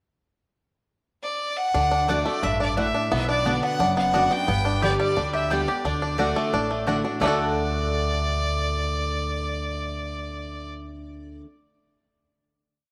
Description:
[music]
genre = bluegrass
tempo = 175 BPM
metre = 4/4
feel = straight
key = D major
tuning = A4 = 440 Hz
[part]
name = clear fiddle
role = melody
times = 1.2-10.7 s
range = D5 to G5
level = -29 LUFS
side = equal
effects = slapback echo
[part]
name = picked steel-string acoustic guitar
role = accompaniment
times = 1.7-11.5 s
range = F#2 to G4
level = -30 LUFS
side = equal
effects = none
[part]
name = bluegrass banjo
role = arpeggios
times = 1.7-11.4 s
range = G3 to A4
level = -30 LUFS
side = equal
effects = none
[part]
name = upright bass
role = bass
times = 1.7-11.4 s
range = F#1 to D2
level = -32 LUFS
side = equal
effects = none
[part]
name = lap resonator guitar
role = second line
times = 2.1-11.4 s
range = D5 to G5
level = -36 LUFS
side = equal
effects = none
[part]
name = mandolin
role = stabs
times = 2.1-11.5 s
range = A3 to G5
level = -35 LUFS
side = equal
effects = none
[sound]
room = light reverb, studio reverb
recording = lossy compression artefacts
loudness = -24 LUFS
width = mono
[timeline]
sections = 0.4-1.7 pickup bar; 1.7-7.2 A section; 7.2-10.0 final chord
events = none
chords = 0.4 N.C.; 1.7 D; 3.1 Bm; 4.5 G; 5.8 D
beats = | 0.37 0.72 1.06 1.40 | 1.75 2.09 2.43 2.77 | 3.12 3.46 3.80 4.14 | 4.48 4.83 5.17 5.51 | 5.85 6.19 6.53 6.87 | 7.21 7.56 7.90 8.24 | 8.58 8.92 9.27 9.61

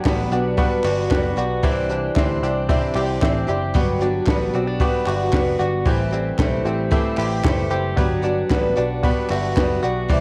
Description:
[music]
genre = jangly indie pop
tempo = 114 BPM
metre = 4/4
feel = straight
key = G major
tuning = A4 = 439 Hz
[part]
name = picked twelve-string acoustic guitar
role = accompaniment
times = 0.0-10.2 s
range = A2 to G4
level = -27 LUFS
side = equal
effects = none
[part]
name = reed electric piano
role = accompaniment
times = 0.0-10.2 s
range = E4 to B5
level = -28 LUFS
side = equal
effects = none
[part]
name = direct-recorded clean electric guitar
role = arpeggios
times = 0.0-10.2 s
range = E3 to G4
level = -28 LUFS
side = equal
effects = none
[part]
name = group handclap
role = percussion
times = 0.0-9.7 s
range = none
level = -39 LUFS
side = equal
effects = none
[part]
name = vintage muted picked electric bass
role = bass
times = 0.1-10.2 s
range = F#1 to D2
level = -28 LUFS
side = equal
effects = none
[part]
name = compact cocktail drum kit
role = drums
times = 0.1-10.2 s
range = hi-hat, kick drum, snare drum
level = -24 LUFS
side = equal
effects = cassette tape
[part]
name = glass harmonica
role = sustained chords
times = 10.1-10.2 s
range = C5 to D6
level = -25 LUFS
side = equal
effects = none
[sound]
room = light reverb, small room ambience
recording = home recording on cassette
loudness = -20 LUFS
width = mono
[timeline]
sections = 0.0-10.2 A section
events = reed electric piano fill 0.6-1.6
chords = 0.0 Gmaj7; 1.6 Cadd9; 3.7 Gmaj7; 5.9 Am7; 8.0 Gmaj7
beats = 0.05 0.58 1.11 | 1.64 2.16 2.69 3.22 | 3.74 4.27 4.80 5.33 | 5.86 6.38 6.91 7.44 | 7.97 8.50 9.03 9.56 | 10.09

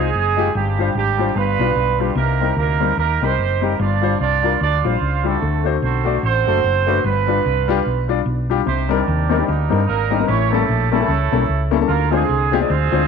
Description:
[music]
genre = uptempo gospel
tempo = 148 BPM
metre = 4/4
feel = swing 59% on 8ths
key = C minor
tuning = A4 = 443 Hz
[part]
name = mellow horn section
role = melody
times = 0.0-13.1 s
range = G3 to F5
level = -20 LUFS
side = right 11 dB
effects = slapback echo
[part]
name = warm concert grand piano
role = accompaniment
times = 0.0-13.0 s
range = G2 to D5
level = -21 LUFS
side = left 11 dB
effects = none
[part]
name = hollow-body short-scale fingered electric bass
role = bass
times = 0.0-13.1 s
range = F#1 to G2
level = -20 LUFS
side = equal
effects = none
[sound]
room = light reverb, small room reverb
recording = 1960s-style stereo with parts hard left and right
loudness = -16 LUFS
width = side -6 dB against mid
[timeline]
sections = 0.0-8.7 A section; 8.7-13.1 B section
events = none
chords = 0.0 Fm7; 0.5 G7sus4; 1.4 G7; 2.2 Cm7; 3.8 G7sus4; 5.4 D7; 7.0 G7; 8.7 Cm9; 10.3 A7b9; 11.9 Dm7b5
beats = 0.14 | 0.54 0.95 1.36 1.76 | 2.17 2.58 2.98 3.39 | 3.80 4.20 4.61 5.02 | 5.42 5.83 6.24 6.64 | 7.05 7.45 7.86 8.26 | 8.67 9.07 9.47 9.88 | 10.28 10.68 11.08 11.48 | 11.88 12.29 12.69

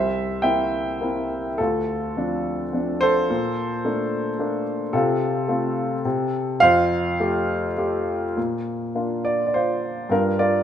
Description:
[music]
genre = classical, lyrical solo piano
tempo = 100-111 BPM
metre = 3/4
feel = rubato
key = F major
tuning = A4 = 440 Hz
[part]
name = warm grand piano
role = solo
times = 0.0-10.6 s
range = C2 to G5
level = -20 LUFS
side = equal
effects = none
[sound]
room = light reverb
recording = minimal, uncompressed stereo recording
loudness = -20 LUFS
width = side -9 dB against mid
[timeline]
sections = 0.0-8.4 A section; 8.4-10.6 B section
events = none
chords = 0.0 C7; 1.6 Dm7; 3.3 Bbmaj7; 4.9 F/C; 6.6 Fadd9; 8.4 Bb; 10.1 Gm7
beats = 0.42 1.00 | 1.59 2.17 2.74 | 3.30 3.85 4.39 | 4.94 5.49 6.05 | 6.62 7.19 7.77 | 8.37 8.96 9.54 | 10.10

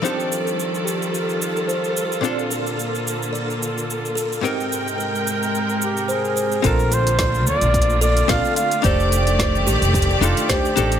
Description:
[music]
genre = sunset chillout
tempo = 109 BPM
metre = 4/4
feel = swing 54% on 16ths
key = Bb major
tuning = A4 = 441 Hz
[part]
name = archtop guitar, miked and amplified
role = accompaniment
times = 0.0-11.0 s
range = Ab2 to G5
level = -26 LUFS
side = left 1 dB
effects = auto-pan, tape echo
[part]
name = clear symphonic string section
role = sustained chords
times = 0.0-11.0 s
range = C3 to G5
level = -24 LUFS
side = equal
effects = none
[part]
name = buzzing kalimba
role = arpeggios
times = 0.0-10.7 s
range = G4 to D5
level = -27 LUFS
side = equal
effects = low-pass filter, tape echo
[part]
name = deep house drum kit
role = drums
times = 0.1-11.0 s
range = cabasa, hi-hat, snare drum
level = -27 LUFS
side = right 2 dB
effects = none
[part]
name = mellow flugelhorn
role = melody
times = 5.8-11.0 s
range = F4 to F5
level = -22 LUFS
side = equal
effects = digital delay
[part]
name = upright bass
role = bass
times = 6.6-11.0 s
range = F1 to Eb2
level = -20 LUFS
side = equal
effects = none
[part]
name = electronic kick drum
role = drums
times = 6.6-10.6 s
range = none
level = -23 LUFS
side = equal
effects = none
[sound]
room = moderate concert hall reverb, RT60 2.2 s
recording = none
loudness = -18 LUFS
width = side -9 dB against mid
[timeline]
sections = 0.0-6.6 A section; 6.6-11.0 B section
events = none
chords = 0.0 F13; 2.2 Bbmaj7; 4.4 Abmaj9; 6.6 Bbmaj7; 8.8 F13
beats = | 0.04 0.59 1.14 1.69 | 2.24 2.79 3.34 3.89 | 4.44 4.99 5.54 6.09 | 6.64 7.19 7.74 8.29 | 8.84 9.39 9.94 10.49

